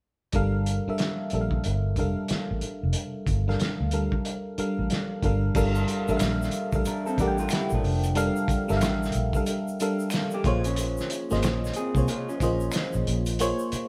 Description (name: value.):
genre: R&B, neo-soul.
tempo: 92 BPM.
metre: 4/4.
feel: swing 62% on 16ths.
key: unclear.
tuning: A4 = 440 Hz.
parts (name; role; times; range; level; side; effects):
FM electric piano; accompaniment; 0.3-13.9 s; G3 to G5; -30 LUFS; equal; chorus.
vintage muted fingered electric bass; bass; 0.3-13.8 s; F1 to D2; -30 LUFS; equal; none.
cloth-damped thuddy drum kit; drums; 0.3-13.9 s; crash cymbal, hi-hat, kick drum, snare drum; -32 LUFS; equal; none.
tube shaker and finger snaps; percussion; 5.6-13.9 s; none; -45 LUFS; equal; none.
electric guitar through a small old amp; second line; 6.9-13.2 s; F3 to Bb4; -35 LUFS; equal; none.
room: wet stone room reverb, RT60 1.2 s.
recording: band playing live in one room.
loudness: -26 LUFS.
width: mono.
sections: 0.3-5.6 A section; 5.6-13.9 B section.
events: none.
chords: 0.3 Gm9; 10.4 Bbm9.